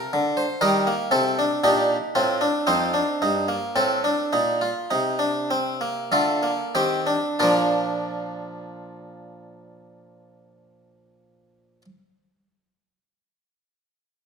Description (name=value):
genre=classical, baroque-style 4-part fugue for harpsichord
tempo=45-62 BPM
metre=4/4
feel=straight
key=Bb major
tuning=A4 = 441 Hz
part: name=harpsichord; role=solo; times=0.0-11.8 s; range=F2 to C5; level=-20 LUFS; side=equal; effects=none
room=wet recital hall reverb, RT60 1.4 s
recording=minimal, uncompressed stereo recording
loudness=-20 LUFS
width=side -6 dB against mid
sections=0.0-7.4 A section; 7.4-12.7 B section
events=slowing down 0.0-7.4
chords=0.0 Dm; 0.6 Eb; 2.7 F7; 7.4 Bb